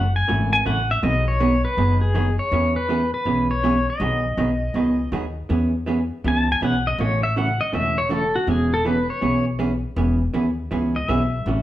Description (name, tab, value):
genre	country, western swing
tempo	161 BPM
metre	4/4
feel	swing 65% on 8ths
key	E major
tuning	A4 = 440 Hz
part	pedal steel guitar	melody	0.0-11.6 s	F#4 to A5	-23 LUFS	left 1 dB	none
part	vintage hollow-body jazz guitar	accompaniment	0.0-11.6 s	B2 to G#4	-23 LUFS	right 2 dB	none
part	upright bass	bass	0.0-11.6 s	E1 to E2	-24 LUFS	left 1 dB	none
room	wet large studio reverb, RT60 0.9 s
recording	band playing live in one room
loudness	-19 LUFS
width	side -14 dB against mid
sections	0.0-5.5 A section; 5.5-11.6 B section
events	pedal steel guitar solo 5.5-11.6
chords	0.0 F#m7; 1.0 B6; 2.5 E6; 4.0 B6; 5.5 E6; 7.0 A6; 8.5 E6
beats	0.29 0.66 | 1.03 1.40 1.77 2.15 | 2.52 2.89 3.26 3.63 | 4.00 4.38 4.75 5.12 | 5.49 5.87 6.24 6.61 | 6.99 7.36 7.73 8.11 | 8.48 8.85 9.22 9.60 | 9.97 10.35 10.72 11.09 | 11.47